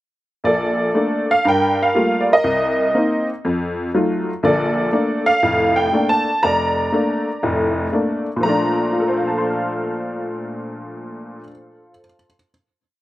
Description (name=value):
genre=solo jazz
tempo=121 BPM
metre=4/4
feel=swing 68% on 8ths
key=Bb major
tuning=A4 = 440 Hz
part: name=honky-tonk upright piano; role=solo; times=0.4-12.5 s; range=F1 to F6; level=-16 LUFS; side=equal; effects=slapback echo
room=little or no reverb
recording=recorded outdoors, with no room sound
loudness=-16 LUFS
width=side -15 dB against mid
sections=0.4-8.4 A section; 8.4-12.4 final chord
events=none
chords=0.4 Bbmaj7; 1.4 Gm9; 2.4 Cm7; 3.4 F7b9; 4.4 Bbmaj7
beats=| 0.45 0.95 1.45 1.94 | 2.44 2.94 3.44 3.94 | 4.43 4.93 5.43 5.92 | 6.42 6.92 7.41 7.91 | 8.41 8.90 9.40 9.90 | 10.40 10.89 11.39 11.89